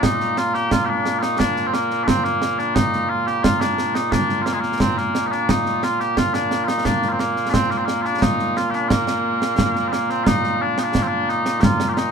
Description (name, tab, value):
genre	scottish traditional, Scottish pipe music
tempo	88 BPM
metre	2/4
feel	straight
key	Bb major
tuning	A4 = 437 Hz
part	mellow small bagpipes	melody	0.0-12.1 s	Bb2 to G4	-19 LUFS	equal	none
part	concert snare drum and concert bass drum	drums	0.0-12.1 s	none	-22 LUFS	right 2 dB	none
room	light reverb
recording	minimal, uncompressed stereo recording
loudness	-17 LUFS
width	side -6 dB against mid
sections	0.0-10.3 A section; 10.3-12.1 B section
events	none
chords	none